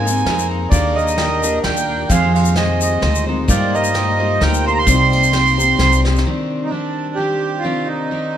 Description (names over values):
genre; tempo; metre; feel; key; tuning
acoustic folk duo or small band; 130 BPM; 3/4; swing 55% on 8ths; C minor; A4 = 440 Hz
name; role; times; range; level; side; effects
accordion; melody; 0.0-8.4 s; D4 to C6; -18 LUFS; right 4 dB; analog delay
picked steel-string acoustic guitar; accompaniment; 0.0-8.4 s; F2 to C5; -21 LUFS; left 2 dB; none
granular cloud pad; sustained chords; 0.0-6.2 s; Bb2 to Ab4; -29 LUFS; left 1 dB; built-in reverb
mandolin; arpeggios; 0.0-6.3 s; G3 to Ab5; -24 LUFS; right 3 dB; none
upright bass; bass; 0.0-6.2 s; C2 to Ab2; -19 LUFS; left 1 dB; none
egg shaker; percussion; 0.1-6.2 s; none; -27 LUFS; left 7 dB; none
soft brush drum kit; drums; 0.3-6.3 s; kick drum, ride cymbal, snare drum; -23 LUFS; left 1 dB; none
room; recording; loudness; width
light reverb; none; -14 LUFS; side -10 dB against mid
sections
0.0-6.3 A section; 6.3-8.4 B section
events
drum fill 6.0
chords
0.0 Abadd9; 0.7 Ebmaj7; 2.1 Fm7; 3.5 Cm7; 4.9 Cm; 6.3 Cmadd9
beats
0.26 | 0.72 1.18 1.64 | 2.10 2.56 3.02 | 3.48 3.95 4.41 | 4.87 5.33 5.79 | 6.25 6.72 7.18 | 7.64 8.10